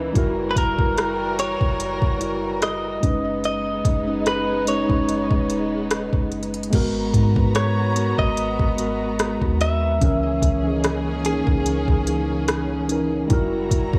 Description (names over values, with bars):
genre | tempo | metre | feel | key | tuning
contemporary R&B | 73 BPM | 4/4 | swing 54% on 16ths | unclear | A4 = 442 Hz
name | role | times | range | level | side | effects
mellow tine electric piano | accompaniment | 0.0-14.0 s | D#3 to B4 | -26 LUFS | equal | none
warm studio string section | sustained chords | 0.0-14.0 s | C#3 to A#5 | -32 LUFS | equal | none
soft 808-style bass | bass | 0.0-14.0 s | E1 to G#2 | -29 LUFS | equal | none
smooth R&B drum kit | drums | 0.2-14.0 s | crash cymbal, hi-hat, kick drum, rim click | -24 LUFS | equal | none
direct-recorded clean electric guitar | melody | 0.5-12.9 s | G#4 to E5 | -28 LUFS | equal | none
room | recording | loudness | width
light reverb, digital ambience | small room ambience | -21 LUFS | mono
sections
0.0-6.7 A section; 6.7-14.0 B section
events
none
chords
0.2 F#7b9; 3.0 B69/F#; 6.7 G#m9; 10.0 C#m69; 13.3 F#7b9